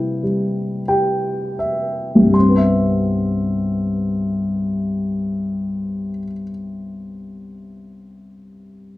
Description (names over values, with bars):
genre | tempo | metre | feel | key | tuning
classical, lyrical solo piano | 25-33 BPM (dotted quarters) | 6/8 | rubato | C major | A4 = 441 Hz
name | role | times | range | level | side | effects
dark baby grand piano | solo | 0.0-9.0 s | C2 to C6 | -18 LUFS | left 1 dB | none
room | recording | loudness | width
moderate recital hall reverb, RT60 1.4 s | dark, warm production | -17 LUFS | side -17 dB against mid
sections
0.0-2.4 A section; 2.4-6.9 B section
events
slowing down 0.0-2.4; grand piano fill 0.2-2.4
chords
0.0 Cmaj7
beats
0.21 | 2.35 4.66